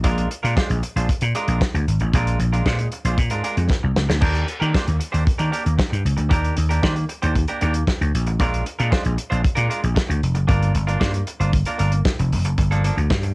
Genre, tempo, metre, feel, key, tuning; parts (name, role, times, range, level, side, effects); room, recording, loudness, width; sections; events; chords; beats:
disco; 115 BPM; 4/4; straight; A4 = 440 Hz
semi-hollow electric guitar; accompaniment; 0.0-13.3 s; F3 to C5; -26 LUFS; right 2 dB; cassette tape
vintage slap bass; bass; 0.0-13.3 s; F1 to Eb3; -20 LUFS; equal
warm soul drum kit; drums; 0.0-13.3 s; crash cymbal, hi-hat, kick drum, snare drum; -22 LUFS; equal
little or no reverb; home recording on cassette; -18 LUFS; side -26 dB against mid
0.0-12.6 A section
drum fill 3.7-4.2
0.0 Bb7; 4.2 Ebmaj7; 8.1 Bb7; 10.5 Gm7; 12.6 Gm9
| 0.04 0.57 1.09 1.61 | 2.13 2.66 3.18 3.70 | 4.22 4.74 5.27 5.79 | 6.31 6.83 7.35 7.88 | 8.40 8.92 9.44 9.96 | 10.49 11.01 11.53 12.05 | 12.58 13.10